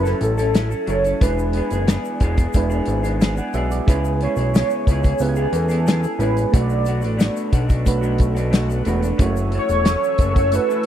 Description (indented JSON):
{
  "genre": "indie pop, bedroom pop",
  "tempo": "90 BPM",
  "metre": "4/4",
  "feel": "straight",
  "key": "F# minor",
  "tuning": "A4 = 441 Hz",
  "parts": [
    { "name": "warm velvety synth lead", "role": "melody", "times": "0.0-10.9 s", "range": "A4 to D5", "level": "-23 LUFS", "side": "right 1 dB", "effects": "lush chorus, slapback echo" },
    { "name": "electric guitar through a small old amp", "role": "accompaniment", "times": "0.0-10.9 s", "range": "F#2 to A4", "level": "-26 LUFS", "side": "left 2 dB", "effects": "wide subtle chorus, warbly pitch drift" },
    { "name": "soft electric-piano-like synth keys", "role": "accompaniment", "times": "0.0-10.9 s", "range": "F#3 to G#5", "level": "-26 LUFS", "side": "right 5 dB", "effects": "chorus" },
    { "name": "fat analog bass", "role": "bass", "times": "0.0-10.6 s", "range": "E1 to E2", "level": "-21 LUFS", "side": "equal", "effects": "none" },
    { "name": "loose indie drum kit", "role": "drums", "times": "0.1-10.9 s", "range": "hi-hat, kick drum, snare drum", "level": "-17 LUFS", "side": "equal", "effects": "none" },
    { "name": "egg shaker", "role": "percussion", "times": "0.1-10.9 s", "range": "none", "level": "-44 LUFS", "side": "left 14 dB", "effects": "none" },
    { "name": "warm analog pad", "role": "sustained chords", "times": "9.2-10.9 s", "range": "A4 to E6", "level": "-32 LUFS", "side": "right 1 dB", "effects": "chorus" }
  ],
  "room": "light reverb",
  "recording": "dry, close 1970s-style studio recording",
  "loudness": "-17 LUFS",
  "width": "side -10 dB against mid",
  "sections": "0.0-10.9 A section",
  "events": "none",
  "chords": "0.0 F#m7; 1.2 E7; 3.9 C#m7; 6.5 Bm7; 9.2 F#m7"
}